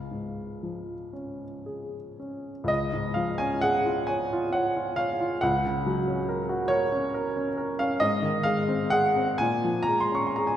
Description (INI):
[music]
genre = classical, romantic nocturne for solo piano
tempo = 37-47 BPM (dotted quarters)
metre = 12/8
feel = rubato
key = Db major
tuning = A4 = 440 Hz
[part]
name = warm baby grand piano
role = solo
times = 0.0-10.6 s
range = Db2 to Db6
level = -25 LUFS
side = equal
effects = none
[sound]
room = wet scoring stage reverb, RT60 2.0 s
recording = none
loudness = -24 LUFS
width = side -10 dB against mid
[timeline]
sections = 0.0-2.7 A section; 2.7-10.6 B section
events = none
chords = 0.0 Db; 5.4 Gb/Db; 8.0 Ab; 9.4 Bbm7